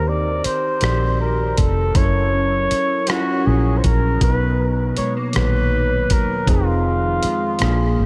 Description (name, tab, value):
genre	slow six-eight R&B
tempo	53 BPM (dotted quarters)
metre	6/8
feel	straight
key	unclear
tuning	A4 = 440 Hz
part	clear flugelhorn	melody	0.0-8.1 s	F4 to D5	-24 LUFS	equal	none
part	mellow electric guitar	second line	0.0-8.1 s	F2 to Bb4	-30 LUFS	equal	analog chorus, diffuse ambient delay
part	overdriven tine electric piano	accompaniment	0.0-8.1 s	Bb2 to D5	-27 LUFS	equal	phaser
part	vintage muted fingered electric bass	bass	0.0-8.1 s	E1 to Eb2	-22 LUFS	equal	none
part	dusty soul sampler-style drum kit	drums	0.4-7.8 s	hi-hat, kick drum, rim click	-24 LUFS	equal	none
room	moderate huge ambient reverb, RT60 4.3 s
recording	dreamy mix soaked in reverb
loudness	-19 LUFS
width	mono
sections	0.0-8.1 A section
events	none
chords	0.0 Eb6; 1.9 Gb7; 4.2 Bmaj7; 6.5 Fm7